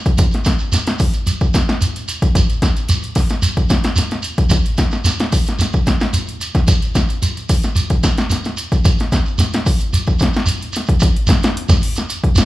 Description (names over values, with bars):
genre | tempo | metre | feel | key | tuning
afrobeat | 111 BPM | 4/4 | straight | none | none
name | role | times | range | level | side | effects
punchy analog drum machine | drums | 0.1-12.5 s | hi-hat, kick drum, snare drum | -15 LUFS | equal | overdrive
shekere | percussion | 0.1-12.5 s | none | -19 LUFS | right 1 dB | none
room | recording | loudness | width
moderate large studio reverb, RT60 1.4 s | band playing live in one room | -14 LUFS | side -16 dB against mid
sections
0.0-11.0 A section; 11.0-12.5 B section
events
none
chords
none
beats
| 0.19 0.73 1.27 1.81 | 2.35 2.89 3.43 3.98 | 4.52 5.06 5.60 6.14 | 6.68 7.22 7.76 8.31 | 8.85 9.39 9.93 10.47 | 11.01 11.55 12.09